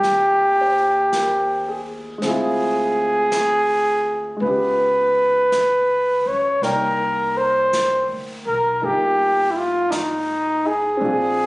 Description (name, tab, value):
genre	jazz ballad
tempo	55 BPM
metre	4/4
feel	swing 67% on 8ths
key	unclear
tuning	A4 = 441 Hz
part	breathy trumpet	melody	0.0-11.5 s	D4 to Db5	-17 LUFS	equal	none
part	warm baby grand piano	accompaniment	0.0-11.5 s	Ab3 to G5	-27 LUFS	equal	none
part	upright bass	bass	0.0-11.5 s	G1 to Eb2	-35 LUFS	equal	none
part	jazz brush drum kit	drums	0.0-11.5 s	brushed snare drum, hi-hat, snare drum	-34 LUFS	right 1 dB	none
room	little or no reverb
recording	recorded on a phone in the room, studio reverb, nothing above 10.6 kHz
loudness	-17 LUFS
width	side -21 dB against mid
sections	0.0-11.5 A section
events	none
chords	0.0 Ab69; 2.2 Dm7b5; 4.4 Db7#11; 6.6 Cm9